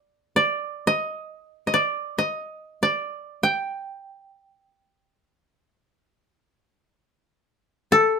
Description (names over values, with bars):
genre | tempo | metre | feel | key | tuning
japanese traditional, Japanese chamber music | free time | none | none | unclear | A4 = 441 Hz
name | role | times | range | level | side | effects
koto | solo | 0.0-8.2 s | A4 to G5 | -21 LUFS | equal | none
room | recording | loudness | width
light reverb | none | -22 LUFS | side -5 dB against mid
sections
0.0-8.2 A section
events
none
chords
none